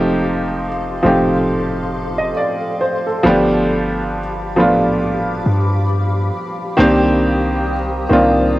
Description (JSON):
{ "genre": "contemporary R&B", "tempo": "68 BPM", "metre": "4/4", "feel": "swing 58% on 16ths", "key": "unclear", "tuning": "A4 = 439 Hz", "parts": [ { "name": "warm baby grand piano", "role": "accompaniment", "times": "0.0-8.6 s", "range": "Eb3 to Eb5", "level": "-15 LUFS", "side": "equal", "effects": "none" }, { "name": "granular cloud pad", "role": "sustained chords", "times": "0.0-8.6 s", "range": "G4 to Eb6", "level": "-25 LUFS", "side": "left 1 dB", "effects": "built-in reverb" }, { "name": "warm 808-style bass", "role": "bass", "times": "0.0-8.6 s", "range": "F1 to G2", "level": "-22 LUFS", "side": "equal", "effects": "none" } ], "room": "moderate spring reverb, RT60 1.7 s, small room ambience", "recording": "home recording on cassette", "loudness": "-14 LUFS", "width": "side -17 dB against mid", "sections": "0.0-8.6 A section", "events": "none", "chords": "0.0 F7; 3.3 G7; 6.8 Cm7", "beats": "0.61 1.49 2.37 | 3.25 4.14 5.02 5.90 | 6.78 7.67 8.55" }